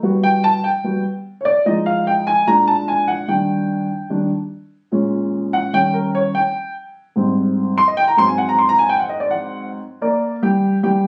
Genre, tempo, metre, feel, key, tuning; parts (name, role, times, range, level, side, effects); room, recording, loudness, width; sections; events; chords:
jazz; 147 BPM; 4/4; straight; A4 = 439 Hz
dark upright piano; solo; 0.0-11.1 s; Ab2 to C6; -18 LUFS; equal
moderate club reverb, RT60 0.6 s; recorded on a phone in the room, studio ambience; -18 LUFS; mono
0.0-9.8 A section; 9.8-11.1 B section
upright piano solo 0.0-9.8
0.0 Gmaj7; 1.7 Fm7; 2.5 Bbaug7; 3.3 Ebmaj7; 4.9 Bbm7; 5.7 Eb7; 6.6 Abmaj7; 8.2 Ab7; 9.8 Gm